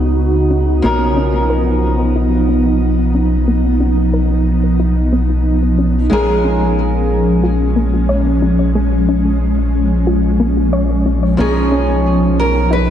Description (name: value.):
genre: chillout.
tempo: 91 BPM.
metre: 4/4.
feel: straight.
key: B lydian.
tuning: A4 = 442 Hz.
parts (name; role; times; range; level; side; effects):
flamenco guitar; accompaniment; 0.0-12.9 s; E#3 to C#5; -23 LUFS; equal; auto-pan, vintage 12-bit sampler grit, shimmer reverb, ping-pong delay.
ethereal airy pad; sustained chords; 0.0-12.9 s; C#3 to F#4; -16 LUFS; equal; ensemble chorus, built-in reverb, shimmer reverb.
soft round pluck; arpeggios; 0.0-12.9 s; G#3 to C#5; -22 LUFS; left 2 dB; chorus, shimmer reverb, ping-pong delay.
round analog bass; bass; 0.0-12.9 s; A#1 to C#2; -16 LUFS; equal; none.
nylon-string guitar; melody; 6.1-12.9 s; G#4 to B4; -20 LUFS; right 1 dB; wide subtle chorus, shimmer reverb, tape echo.
room: wet lush hall reverb, RT60 2.7 s.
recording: dreamy mix soaked in reverb, nothing above 10.7 kHz.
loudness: -12 LUFS.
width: side -10 dB against mid.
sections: 0.0-12.9 A section.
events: filter sweep on synth arpeggio sound 0.0-12.9.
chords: 0.0 C#9sus4; 0.8 Bmaj9#11; 6.1 A#m7; 11.4 Bmaj9#11.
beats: 0.18 | 0.84 1.50 2.16 2.82 | 3.48 4.13 4.79 5.45 | 6.11 6.77 7.43 8.09 | 8.75 9.41 10.07 10.73 | 11.39 12.05 12.71.